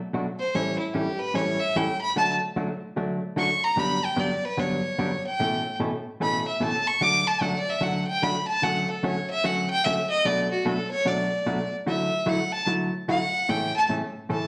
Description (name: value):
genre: country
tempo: 148 BPM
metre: 4/4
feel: swing 65% on 8ths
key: D major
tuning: A4 = 436 Hz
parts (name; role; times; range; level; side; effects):
- hollow-body jazz guitar; accompaniment; 0.1-14.5 s; G2 to A4; -30 LUFS; equal; none
- clear fiddle; melody; 0.4-14.5 s; E4 to D6; -27 LUFS; equal; none
room: wet large studio reverb, RT60 0.9 s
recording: none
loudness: -26 LUFS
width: mono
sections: 0.0-14.5 A section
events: fiddle solo 0.0-14.5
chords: 0.0 Bm7; 0.5 A7; 2.2 D; 3.8 Gmaj7; 5.4 Aadd9; 7.0 D; 8.6 Dmaj7; 10.3 Bm7; 11.9 Dadd9; 13.5 A